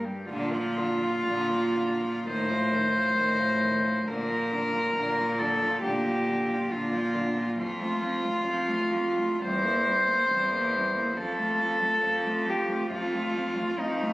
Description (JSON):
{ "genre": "classical, lyrical piece for cello ensemble", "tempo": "57-70 BPM", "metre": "4/4", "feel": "rubato", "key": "Bb major", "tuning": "A4 = 440 Hz", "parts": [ { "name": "warm cello", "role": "melody", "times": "0.0-14.1 s", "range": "Eb4 to C5", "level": "-26 LUFS", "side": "equal", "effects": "none" }, { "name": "rich cello", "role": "accompaniment", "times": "0.0-14.1 s", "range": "D3 to Bb3", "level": "-35 LUFS", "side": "equal", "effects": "none" }, { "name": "warm cello", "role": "bass", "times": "0.0-14.1 s", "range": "E2 to Bb2", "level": "-30 LUFS", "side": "equal", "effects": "none" }, { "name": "warm cello", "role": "second line", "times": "0.3-14.1 s", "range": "C4 to F4", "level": "-39 LUFS", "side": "right 2 dB", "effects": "none" } ], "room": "moderate recital hall reverb, RT60 1.5 s", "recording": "recorded on a phone in the room, club reverb", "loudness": "-24 LUFS", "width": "side -19 dB against mid", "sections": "0.3-14.1 A section", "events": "none", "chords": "0.3 Bb; 2.3 F7/A; 4.1 Bb; 7.6 F; 9.4 C7/E; 11.2 F", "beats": "| 0.29 1.26 2.27 3.18 | 4.07 4.96 5.85 6.72 | 7.59 8.47 9.41 10.31 | 11.18 12.05 12.92 13.79" }